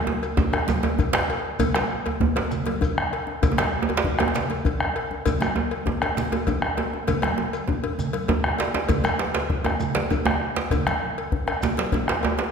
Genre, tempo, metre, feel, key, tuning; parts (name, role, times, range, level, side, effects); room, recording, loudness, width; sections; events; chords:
west african traditional, West African drum ensemble; 132 BPM (dotted quarters); 12/8; straight
djembe; percussion; 0.1-12.5 s; -25 LUFS; right 4 dB
congas; percussion; 0.2-12.5 s; -33 LUFS; right 2 dB
cowbell; percussion; 0.2-12.4 s; -31 LUFS; left 6 dB
shekere; percussion; 0.2-12.0 s; -39 LUFS; left 2 dB
bombo; percussion; 0.4-12.5 s; -26 LUFS; left 1 dB
djembe; percussion; 0.4-12.5 s; -32 LUFS; left 4 dB
wet scoring stage reverb, RT60 1.5 s; recorded in a church or concert hall; -21 LUFS; side -6 dB against mid
0.0-1.6 A section; 1.6-12.5 A section
drum fill 0.0-1.6